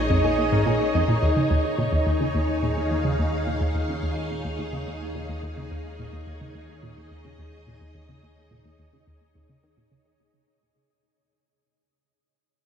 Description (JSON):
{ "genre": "ambient, sequencer-driven space music", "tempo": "107 BPM", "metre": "4/4", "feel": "straight", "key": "unclear", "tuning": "A4 = 442 Hz", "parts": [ { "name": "string machine, full ensemble", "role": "sustained chords", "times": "0.0-10.2 s", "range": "Eb4 to F5", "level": "-27 LUFS", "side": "left 1 dB", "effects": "ensemble chorus" }, { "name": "concert harp", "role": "arpeggios", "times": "0.0-3.8 s", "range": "Eb4 to Eb5", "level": "-30 LUFS", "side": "right 1 dB", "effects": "auto-pan, tape echo" }, { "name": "fat analog bass", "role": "bass", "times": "0.0-10.2 s", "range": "Bb1 to Eb2", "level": "-34 LUFS", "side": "equal", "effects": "none" }, { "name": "analog pluck", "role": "riff", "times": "0.1-10.0 s", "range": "Eb2 to Eb3", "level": "-25 LUFS", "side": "equal", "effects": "chorus, tape echo" } ], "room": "wet huge ambient reverb, RT60 7.8 s", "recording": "none", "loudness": "-22 LUFS", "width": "side -8 dB against mid", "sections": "0.0-10.2 A section", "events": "fade-out 0.0-10.2; filter sweep on synth arpeggio sound 0.0-10.2", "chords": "0.0 Bbm; 1.2 Ebsus2" }